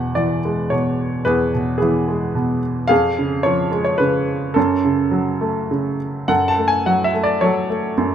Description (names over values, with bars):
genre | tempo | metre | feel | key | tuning
classical, lyrical solo piano | 108 BPM | 3/4 | rubato | F# minor | A4 = 442 Hz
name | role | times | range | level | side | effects
clear baby grand piano | solo | 0.0-8.1 s | E2 to A5 | -16 LUFS | equal | none
room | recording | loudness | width
light reverb | close, detailed microphones | -16 LUFS | side -9 dB against mid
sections
0.0-6.3 A section; 6.3-8.1 B section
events
none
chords
0.0 Eadd9; 2.9 C#/E#; 4.6 F#m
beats
0.15 0.71 | 1.26 1.81 2.36 | 2.91 3.46 4.01 | 4.57 5.13 5.71 | 6.30 6.87 7.43 | 7.99